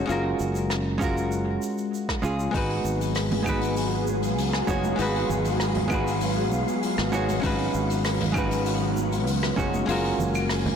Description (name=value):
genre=sunset chillout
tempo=98 BPM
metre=4/4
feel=straight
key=unclear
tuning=A4 = 439 Hz
part: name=hollow-body jazz guitar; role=accompaniment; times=0.0-10.8 s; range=G#3 to C#5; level=-26 LUFS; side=equal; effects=auto-pan, ping-pong delay
part: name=sustaining fretless electric bass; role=bass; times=0.0-10.8 s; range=F#1 to C#2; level=-29 LUFS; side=equal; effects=tube saturation
part: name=jazz brush drum kit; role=drums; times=0.1-10.8 s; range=claves, hi-hat, rim click, shaker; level=-33 LUFS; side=left 1 dB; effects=none
part: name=electronic kick drum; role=drums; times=1.0-9.7 s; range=none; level=-31 LUFS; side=equal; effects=none
part: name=soft string machine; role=sustained chords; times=2.9-10.8 s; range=D#3 to G#5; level=-29 LUFS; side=equal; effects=phaser, ensemble chorus
part: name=wind-like tuned noise texture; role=texture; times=3.4-10.8 s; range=E#4 to E#5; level=-35 LUFS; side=right 1 dB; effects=built-in reverb
part: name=congas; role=percussion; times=3.3-10.8 s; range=none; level=-34 LUFS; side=right 4 dB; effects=none
room=moderate lush hall reverb, RT60 1.8 s, studio reverb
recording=blown-out, overdriven recording, overdrive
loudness=-23 LUFS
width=side -7 dB against mid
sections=0.0-10.8 A section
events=none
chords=0.1 F#maj9; 2.5 C#9sus4; 9.9 F#maj9